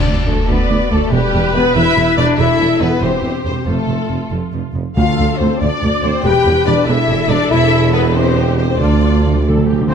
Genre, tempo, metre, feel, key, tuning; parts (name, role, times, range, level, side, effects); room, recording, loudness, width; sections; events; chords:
cinematic; 94 BPM (dotted quarters); 6/8; straight; A4 = 441 Hz
warm symphonic violin section; melody; 0.0-9.9 s; G4 to G5; -25 LUFS; left 5 dB
rich chamber violin section; second line; 0.0-9.9 s; G4 to G5; -22 LUFS; left 3 dB
mellow French horn section; sustained chords; 0.0-9.9 s; G3 to G4; -18 LUFS; left 4 dB
mellow tuba; bass; 0.1-9.9 s; E1 to D2; -22 LUFS; right 4 dB
rich symphonic cello section; bass; 0.1-9.9 s; D2 to C4; -20 LUFS; right 3 dB
warm symphonic double bass section; bass; 0.1-9.9 s; E1 to D2; -19 LUFS; right 3 dB
warm symphonic viola section; accompaniment; 0.5-9.9 s; F4 to D5; -23 LUFS; equal
timpani; percussion; 5.0-5.6, 8.8-9.9 s; D3; -22 LUFS; left 2 dB
warm oboe; second line; 9.9 s; C5; -27 LUFS; equal
mellow trumpet section; stabs; 9.9 s; C5; -24 LUFS; right 2 dB
wet scoring stage reverb, RT60 1.7 s; -12 LUFS; side -7 dB against mid
0.0-9.9 A section
timpani fill 8.8-9.9
0.0 Bm7/D; 1.1 Em; 3.7 F; 5.0 Dm; 6.2 Em; 8.8 Dm7